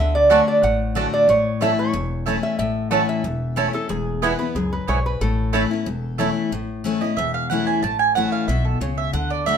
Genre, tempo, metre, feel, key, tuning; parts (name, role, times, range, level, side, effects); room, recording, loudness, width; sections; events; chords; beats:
bluegrass; 183 BPM; 4/4; straight; A major; A4 = 439 Hz
lap resonator guitar; melody; 0.0-6.2 s; G#4 to F#5; -20 LUFS; right 2 dB
picked steel-string acoustic guitar; accompaniment; 0.0-9.6 s; E2 to F#4; -24 LUFS; left 5 dB
upright bass; bass; 0.0-9.6 s; E1 to D2; -25 LUFS; equal
mandolin; stabs; 0.3-9.6 s; A3 to A5; -22 LUFS; right 7 dB
light reverb; minimal, uncompressed stereo recording; -18 LUFS; side -7 dB against mid
0.0-6.5 A section; 6.5-9.6 B section
mandolin solo 6.5-9.6
0.0 D; 1.3 A; 3.9 E; 5.2 A
0.30 0.63 0.96 | 1.29 1.61 1.94 2.27 | 2.59 2.92 3.25 3.58 | 3.90 4.23 4.56 4.88 | 5.21 5.54 5.87 6.19 | 6.52 6.85 7.17 7.50 | 7.83 8.16 8.48 8.81 | 9.14 9.46